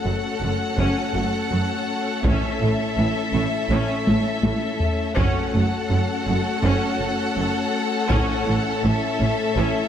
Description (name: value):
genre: cinematic, epic orchestral film score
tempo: 82 BPM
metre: 4/4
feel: straight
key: F# minor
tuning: A4 = 440 Hz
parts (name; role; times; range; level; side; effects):
- warm symphonic violin section; melody; 0.0-9.9 s; E5 to F#5; -28 LUFS; left 2 dB; none
- rich symphonic violin section; second line; 0.0-9.9 s; A4; -30 LUFS; left 5 dB; none
- clear symphonic string section; sustained chords; 0.0-9.9 s; C#4 to C#5; -30 LUFS; equal; none
- dark French horn section; sustained chords; 0.0-9.9 s; A3 to C#4; -29 LUFS; left 4 dB; none
- rich symphonic viola section; accompaniment; 0.1-9.9 s; E3 to C#4; -28 LUFS; right 1 dB; none
- rich symphonic cello section; bass; 0.1-9.7 s; F#2 to A2; -26 LUFS; right 2 dB; none
- rich symphonic double bass section; bass; 0.1-9.6 s; F#1 to A1; -26 LUFS; right 2 dB; none
- solo taiko drums; drums; 2.2-8.8 s; none; -24 LUFS; equal; none
room: moderate scoring stage reverb, RT60 1.5 s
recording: none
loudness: -20 LUFS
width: side -9 dB against mid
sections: 0.0-9.9 A section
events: drum fill 4.1-5.2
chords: 0.0 F#m; 2.2 A; 5.2 F#m; 8.1 A